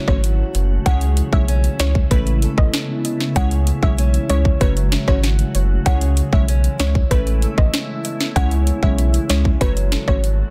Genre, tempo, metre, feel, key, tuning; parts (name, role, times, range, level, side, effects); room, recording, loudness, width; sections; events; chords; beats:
dancehall; 96 BPM; 4/4; straight; C# minor; A4 = 440 Hz
glassy FM pad; sustained chords; 0.0-10.5 s; C#3 to E4; -29 LUFS; equal; ensemble chorus, built-in reverb, sidechain pumping
flamenco guitar; arpeggios; 0.0-10.5 s; C#3 to C#5; -32 LUFS; equal
soft round pluck; melody; 0.1-10.2 s; B4 to F#5; -30 LUFS; equal; chorus, tape echo
wavetable chord stab; accompaniment; 0.1-10.2 s; G#3 to C#5; -29 LUFS; equal
saturated sub bass; bass; 0.1-10.4 s; F#1 to C#2; -20 LUFS; equal
island pop drum kit; drums; 0.1-10.4 s; finger snaps, hi-hat, kick drum, rim click, snare drum; -21 LUFS; equal
digital ambience; dense, heavily limited modern master; -18 LUFS; mono
0.0-10.5 A section
0.0 F#m; 0.9 C#m; 2.1 Aadd9; 3.4 C#m; 4.6 F#m; 5.9 C#m; 7.1 Aadd9; 8.4 C#m; 9.6 F#m
0.23 | 0.86 1.48 2.11 2.73 | 3.36 3.98 4.61 5.23 | 5.86 6.48 7.11 7.73 | 8.36 8.98 9.61 10.23